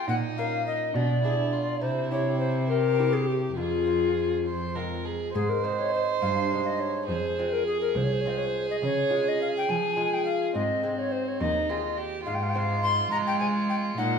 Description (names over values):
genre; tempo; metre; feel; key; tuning
classical, baroque-style sonata movement with continuo; 69 BPM (dotted quarters); 6/8; straight; F minor, Ab major from 5.3 s; A4 = 438 Hz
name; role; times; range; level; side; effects
mellow tenor recorder; melody; 0.0-14.2 s; F4 to C6; -28 LUFS; left 4 dB; none
warm violin; second line; 0.0-14.2 s; C4 to C5; -30 LUFS; right 6 dB; none
lute; accompaniment; 0.0-14.2 s; Eb2 to C5; -33 LUFS; equal; none
warm cello; bass; 0.0-14.2 s; C2 to Ab3; -30 LUFS; equal; none
room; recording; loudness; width
moderate recital hall reverb, RT60 1.3 s; small room reverb; -24 LUFS; side -6 dB against mid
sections
0.0-5.3 A section; 5.3-14.2 A section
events
none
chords
0.1 Bbmadd11; 0.9 Bdim7; 1.8 C; 3.6 Fm; 5.3 Ab; 7.1 Fm; 8.8 Db; 10.5 Ab; 12.3 Fm/Ab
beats
| 0.08 0.94 | 1.81 2.68 | 3.56 4.45 | 5.34 6.21 | 7.08 7.95 | 8.82 9.69 | 10.55 11.41 | 12.27 13.12 | 13.99